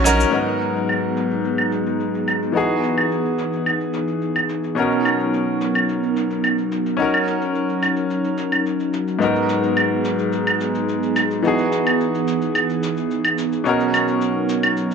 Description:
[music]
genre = sunset chillout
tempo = 108 BPM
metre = 4/4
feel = straight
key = G# minor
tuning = A4 = 440 Hz
[part]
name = bright grand piano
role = accompaniment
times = 0.0-14.9 s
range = G#2 to C#5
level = -21 LUFS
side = left 1 dB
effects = auto-pan, ping-pong delay
[part]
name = airy breathy pad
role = sustained chords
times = 0.0-14.9 s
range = D#3 to A#4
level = -22 LUFS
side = equal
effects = chorus
[part]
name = shaker and claves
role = drums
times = 0.1-14.9 s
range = none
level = -24 LUFS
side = right 1 dB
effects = overdrive, low-pass filter on perc, low-pass filter on snare, low-pass filter on room
[sound]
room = wet plate reverb, RT60 2.0 s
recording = bright 1980s-style digital production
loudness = -18 LUFS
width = side -6 dB against mid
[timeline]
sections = 0.3-14.9 A section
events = filter sweep on analog synth pad 0.3-14.9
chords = 0.3 G#m7; 2.6 Emaj7; 4.8 Bmaj7; 7.0 D#m7; 9.2 G#m7; 11.4 Emaj7; 13.7 Bmaj7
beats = | 0.33 0.89 1.44 2.00 | 2.55 3.11 3.66 4.22 | 4.78 5.33 5.89 6.44 | 7.00 7.55 8.11 8.66 | 9.22 9.78 10.33 10.89 | 11.44 12.00 12.55 13.11 | 13.66 14.22 14.78

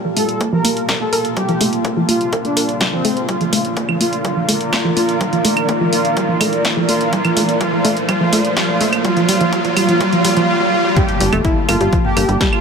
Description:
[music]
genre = melodic techno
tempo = 125 BPM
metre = 4/4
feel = straight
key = G minor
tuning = A4 = 435 Hz
[part]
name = dark analog pad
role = sustained chords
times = 0.0-12.6 s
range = Bb3 to A5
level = -24 LUFS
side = right 1 dB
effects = chorus, sidechain pumping
[part]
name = warbly dusty pluck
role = arpeggios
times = 0.0-12.5 s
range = F3 to E5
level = -19 LUFS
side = right 1 dB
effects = chorus, sidechain pumping, digital delay
[part]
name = riser and impact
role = sound effects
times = 0.0-12.6 s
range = none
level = -24 LUFS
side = equal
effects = none
[part]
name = warbly tape-like pad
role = texture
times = 0.0-10.5 s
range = G3 to D5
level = -25 LUFS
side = equal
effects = chorus, built-in reverb, sidechain pumping
[part]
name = soft supersaw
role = melody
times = 0.2-12.6 s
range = C4 to Bb4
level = -20 LUFS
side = equal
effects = sidechain pumping, low-pass filter, ping-pong delay
[part]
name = punchy analog drum machine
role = drums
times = 0.2-12.6 s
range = claves, hi-hat, snare drum, toms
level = -21 LUFS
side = right 1 dB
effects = sidechain pumping on hats, high-pass filter on hats, sidechain pumping on toms, high-pass filter on toms, high-pass filter on snare, sidechain pumping on perc, high-pass filter on perc, high-pass filter on room
[part]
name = electronic kick drum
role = drums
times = 0.4-12.5 s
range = none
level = -21 LUFS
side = left 1 dB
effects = high-pass filter on kick, high-pass filter on room
[part]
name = tight sequencer bass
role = bass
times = 11.2-12.4 s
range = F1 to G1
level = -19 LUFS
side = left 1 dB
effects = tube saturation, sidechain pumping
[sound]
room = moderate huge ambient reverb, RT60 6.2 s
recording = none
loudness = -14 LUFS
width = side -6 dB against mid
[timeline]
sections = 0.0-11.0 A section; 11.0-12.6 B section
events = build-up 0.0-11.0; riser 0.0-11.0; filter sweep on supersaw synth 0.0-11.0; drum fill 10.6-11.0; drop 11.0-12.6; impact 11.0-12.6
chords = 0.0 Gmadd9; 3.3 Bb; 11.0 Gmadd9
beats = 0.41 0.89 | 1.37 1.85 2.33 2.81 | 3.29 3.77 4.25 4.73 | 5.21 5.69 6.17 6.65 | 7.13 7.61 8.09 8.57 | 9.05 9.53 10.01 10.49 | 10.97 11.45 11.93 12.41

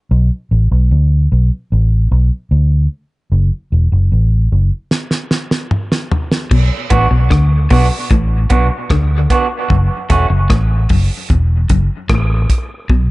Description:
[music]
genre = dub reggae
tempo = 75 BPM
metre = 4/4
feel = straight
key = B minor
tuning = A4 = 438 Hz
[part]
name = vintage muted fingered electric bass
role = bass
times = 0.1-13.1 s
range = E1 to D2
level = -12 LUFS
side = equal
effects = none
[part]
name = damped 70s drum kit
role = drums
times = 4.9-13.1 s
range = crash cymbal, hi-hat, kick drum, rim click, snare drum, toms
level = -16 LUFS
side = equal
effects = none
[part]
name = electric guitar at the edge of break-up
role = riff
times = 6.5-13.0 s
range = E2 to D3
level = -20 LUFS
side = left 3 dB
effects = tremolo, dub echo
[part]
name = electric guitar through a small old amp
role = accompaniment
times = 6.9-10.3 s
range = A3 to F#4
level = -18 LUFS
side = right 4 dB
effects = low-pass filter, dub echo
[sound]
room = light reverb, studio reverb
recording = echo-heavy mix, nothing above 10.9 kHz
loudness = -12 LUFS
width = side -20 dB against mid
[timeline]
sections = 0.0-6.5 A section; 6.5-13.1 B section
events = break 0.0-6.5; drum fill 4.9-6.5; stop 4.9-6.5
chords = 0.1 Bm; 3.3 F#m; 6.5 Bm; 9.7 F#m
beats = | 0.11 0.91 1.71 2.51 | 3.31 4.11 4.91 5.71 | 6.51 7.30 8.10 8.90 | 9.70 10.50 11.30 12.10 | 12.89

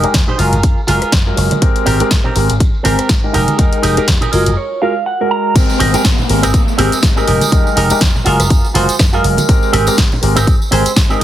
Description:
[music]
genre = filtered disco house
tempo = 122 BPM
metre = 4/4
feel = swing 56% on 16ths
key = Ab major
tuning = A4 = 439 Hz
[part]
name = dark concert grand piano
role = accompaniment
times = 0.0-11.2 s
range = Gb3 to G5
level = -17 LUFS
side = left 1 dB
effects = phaser, sidechain pumping, low-pass filter
[part]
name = electric guitar with an envelope filter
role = riff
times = 0.0-11.2 s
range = C4 to Bb5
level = -18 LUFS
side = right 3 dB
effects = sidechain pumping, low-pass filter
[part]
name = slap bass with an envelope filter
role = bass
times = 0.0-11.2 s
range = F1 to Ab2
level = -17 LUFS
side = equal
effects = tube saturation, sidechain pumping, low-pass filter
[part]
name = house drum kit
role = drums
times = 0.0-11.2 s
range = hi-hat, rim click, snare drum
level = -18 LUFS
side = left 1 dB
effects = small room ambience
[part]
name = tambourine and congas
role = percussion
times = 0.0-11.2 s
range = none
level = -22 LUFS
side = right 2 dB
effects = sidechain pumping on perc, low-pass filter on perc
[part]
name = electronic kick drum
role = drums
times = 0.1-11.1 s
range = none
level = -13 LUFS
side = equal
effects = small room ambience
[part]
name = downlifter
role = sound effects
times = 5.6-9.5 s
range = none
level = -25 LUFS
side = equal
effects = none
[sound]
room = little or no reverb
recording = heavily compressed radio sound, multiband compression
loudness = -10 LUFS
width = side -12 dB against mid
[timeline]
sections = 0.0-5.6 A section; 5.6-11.2 B section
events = clean electric guitar fill 4.1-5.6; break 4.6-5.6; drop 5.6-11.2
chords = 0.4 Gbmaj9; 1.6 Abmaj9; 3.3 Fm11; 4.3 Gbmaj9; 5.6 Abmaj9; 7.3 Fm11; 8.3 Gbmaj9; 9.5 Abmaj9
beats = 0.15 0.64 1.13 | 1.62 2.11 2.60 3.10 | 3.59 4.08 4.57 5.06 | 5.56 6.05 6.54 7.03 | 7.52 8.02 8.51 9.00 | 9.49 9.98 10.47 10.96

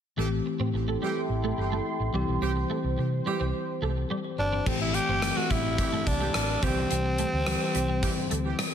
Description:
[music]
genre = 1980s-style pop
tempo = 107 BPM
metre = 4/4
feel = straight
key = A minor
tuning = A4 = 436 Hz
[part]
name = bell-like tine electric piano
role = accompaniment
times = 0.2-8.7 s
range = D3 to D5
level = -32 LUFS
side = moving between left 8 dB and left 2 dB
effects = auto-pan
[part]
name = sweeping resonant pad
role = sustained chords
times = 0.2-4.6 s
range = E4 to C6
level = -34 LUFS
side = right 2 dB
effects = chorus
[part]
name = twelve-string electric guitar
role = riff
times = 0.2-8.7 s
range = G3 to C4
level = -36 LUFS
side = right 4 dB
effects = ensemble chorus, digital delay
[part]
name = warm horn section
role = stabs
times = 0.2-8.6 s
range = E3 to G4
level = -37 LUFS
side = right 6 dB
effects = digital delay
[part]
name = hollow-body short-scale fingered electric bass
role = bass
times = 0.2-8.5 s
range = G1 to C3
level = -30 LUFS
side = equal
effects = none
[part]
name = growling tenor saxophone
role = melody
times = 4.4-8.6 s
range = C4 to G4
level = -29 LUFS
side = equal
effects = none
[part]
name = gated 80s drum kit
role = drums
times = 4.7-8.7 s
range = crash cymbal, hi-hat, kick drum, rim click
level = -29 LUFS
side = equal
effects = gated reverb
[sound]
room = moderate lush hall reverb, RT60 2.3 s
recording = none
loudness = -25 LUFS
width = side -8 dB against mid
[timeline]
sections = 0.2-4.7 A section; 4.7-8.7 B section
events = none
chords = 0.2 Am7; 2.1 C; 4.7 Am7; 6.6 C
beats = | 0.18 0.74 1.30 1.86 | 2.42 2.98 3.54 4.11 | 4.67 5.23 5.79 6.35 | 6.91 7.47 8.03 8.59

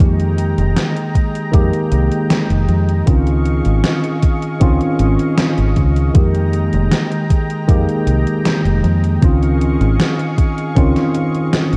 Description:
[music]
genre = vaporwave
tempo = 78 BPM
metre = 4/4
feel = straight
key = F minor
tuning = A4 = 441 Hz
[part]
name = tine electric piano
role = accompaniment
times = 0.0-11.8 s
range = Eb3 to G4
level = -20 LUFS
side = equal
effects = subtle chorus, tape echo
[part]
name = lush unison pad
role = sustained chords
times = 0.0-11.8 s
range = Ab3 to Db6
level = -29 LUFS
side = equal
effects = chorus
[part]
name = fingered electric bass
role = bass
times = 0.0-11.8 s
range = F1 to F2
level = -18 LUFS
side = equal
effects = none
[part]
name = electronic kick drum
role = drums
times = 0.0-10.9 s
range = none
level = -16 LUFS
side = equal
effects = overdrive
[part]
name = gated 80s digital drum machine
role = drums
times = 0.0-11.8 s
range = hi-hat, snare drum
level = -22 LUFS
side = equal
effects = gated reverb, gated reverb snare, overdrive
[sound]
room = digital ambience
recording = dark, warm production, cassette tape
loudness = -15 LUFS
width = mono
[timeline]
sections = 0.0-11.8 A section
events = none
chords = 0.0 Fm11; 3.1 Dbmaj9; 6.2 Fm11; 9.2 Dbmaj9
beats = | 0.00 0.77 1.54 2.31 | 3.07 3.84 4.61 5.38 | 6.15 6.92 7.69 8.46 | 9.23 10.00 10.77 11.54

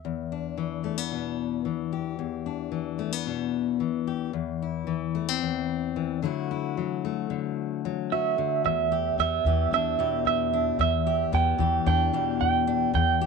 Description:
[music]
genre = indie folk with a building arrangement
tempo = 112 BPM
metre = 4/4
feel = straight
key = E minor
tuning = A4 = 436 Hz
[part]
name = fingerpicked steel-string acoustic guitar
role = accompaniment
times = 0.0-13.3 s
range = E2 to G4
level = -28 LUFS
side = left 12 dB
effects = none
[part]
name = electric guitar through a small old amp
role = melody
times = 8.1-13.3 s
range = E5 to G5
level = -24 LUFS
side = right 11 dB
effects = tremolo
[part]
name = upright bass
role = bass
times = 8.6-13.3 s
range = E2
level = -28 LUFS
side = equal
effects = none
[sound]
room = moderate spring reverb, RT60 1.6 s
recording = 1960s-style stereo with parts hard left and right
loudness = -24 LUFS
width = side -4 dB against mid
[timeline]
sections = 0.0-8.7 A section; 8.7-13.3 B section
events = build-up 8.7-13.3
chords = 0.0 Em7; 4.3 C/E; 6.2 Dadd9; 8.7 Em7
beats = | 0.04 0.58 1.11 1.65 | 2.19 2.73 3.26 3.80 | 4.34 4.88 5.42 5.96 | 6.50 7.04 7.57 8.11 | 8.65 9.19 9.72 10.26 | 10.80 11.34 11.87 12.41 | 12.95

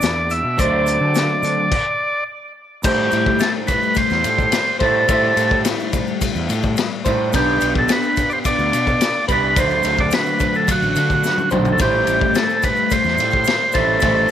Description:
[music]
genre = psychedelic rock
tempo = 107 BPM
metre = 4/4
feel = straight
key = A dorian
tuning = A4 = 440 Hz
[part]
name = combo organ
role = melody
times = 0.0-14.3 s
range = F#4 to E5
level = -18 LUFS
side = equal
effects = tape echo
[part]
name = electric guitar through a small old amp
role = riff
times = 0.0-14.3 s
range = A2 to C5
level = -21 LUFS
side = equal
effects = phaser
[part]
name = fuzz fingered electric bass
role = bass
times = 0.0-14.3 s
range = A1 to D3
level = -23 LUFS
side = right 1 dB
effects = overdrive
[part]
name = vintage drum kit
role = drums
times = 0.0-14.2 s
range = crash cymbal, hi-hat, kick drum, ride cymbal, snare drum, toms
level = -21 LUFS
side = left 2 dB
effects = none
[part]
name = egg shaker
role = percussion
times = 0.0-14.3 s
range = none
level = -34 LUFS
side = right 23 dB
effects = none
[sound]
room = moderate spring reverb, RT60 1.8 s, small room ambience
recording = 1960s-style stereo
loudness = -15 LUFS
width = side -10 dB against mid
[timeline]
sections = 0.0-2.8 A section; 2.8-14.3 B section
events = stop 1.7-2.8; drum fill 11.2-11.8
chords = 0.0 G; 0.6 D7; 2.8 Am7; 7.3 G/B; 9.6 D7; 11.8 Am7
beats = 0.02 | 0.58 1.15 1.71 2.27 | 2.84 3.40 3.96 4.53 | 5.09 5.65 6.21 6.77 | 7.33 7.89 8.45 9.01 | 9.57 10.13 10.69 11.24 | 11.80 12.36 12.91 13.47 | 14.03

